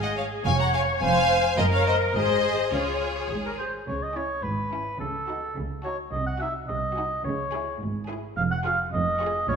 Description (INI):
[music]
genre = cinematic, playful, whimsical film cue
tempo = 106 BPM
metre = 2/4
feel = straight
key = Db major, C# minor from 3.9 s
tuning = A4 = 440 Hz
[part]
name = rich studio violin section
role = melody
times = 0.0-9.4 s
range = Db5 to Db6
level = -30 LUFS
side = left 3 dB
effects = none
[part]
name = rich studio violin section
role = second line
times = 0.0-9.4 s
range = E4 to Gb5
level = -29 LUFS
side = left 3 dB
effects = none
[part]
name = warm studio viola section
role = accompaniment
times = 0.0-9.4 s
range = C#4 to Db5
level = -29 LUFS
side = equal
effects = none
[part]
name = rich studio cello section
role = bass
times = 0.0-9.6 s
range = F2 to Db3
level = -32 LUFS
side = right 2 dB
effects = none
[part]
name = rich studio double bass section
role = bass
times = 0.0-9.6 s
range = F1 to Db2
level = -31 LUFS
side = right 2 dB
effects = none
[part]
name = mellow oboe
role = second line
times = 3.6-9.6 s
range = A4 to F#5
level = -28 LUFS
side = right 1 dB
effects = none
[sound]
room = wet scoring stage reverb, RT60 1.8 s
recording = minimal, uncompressed stereo recording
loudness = -23 LUFS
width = side -6 dB against mid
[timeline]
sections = 0.0-3.9 A section; 3.9-9.6 B section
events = none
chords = 0.5 Db/F; 1.6 Ebm/Gb (rootless); 2.2 Ab; 2.7 Db; 3.9 C#m; 5.0 D#m7b5/C#; 6.1 G#7/B#; 7.2 C#m; 8.4 Db/F